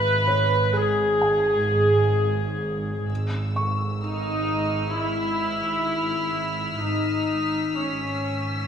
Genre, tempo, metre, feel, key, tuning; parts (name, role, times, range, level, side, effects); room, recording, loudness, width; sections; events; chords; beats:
cinematic, suspense film score; 64 BPM; 4/4; straight; A4 = 440 Hz
warm studio viola section; accompaniment; 0.0-8.7 s; C#4 to B4; -23 LUFS; equal
warm studio cello section; bass; 0.0-8.7 s; G#2; -29 LUFS; right 1 dB
warm studio double bass section; bass; 0.0-8.7 s; G#1; -31 LUFS; right 2 dB
felt-muted upright piano; texture; 0.0-8.7 s; C#5 to C#6; -33 LUFS; left 2 dB
warm studio violin section; texture; 3.1-8.7 s; E6 to B6; -32 LUFS; left 3 dB
reverse cymbal; sound effects; 8.6-8.7 s; barely audible
wet scoring stage reverb, RT60 1.6 s; minimal, uncompressed stereo recording; -21 LUFS; side -8 dB against mid
0.0-8.7 A section
0.0 G#m; 3.1 C#m/G#
0.28 1.22 2.16 | 3.10 4.04 4.97 5.91 | 6.85 7.79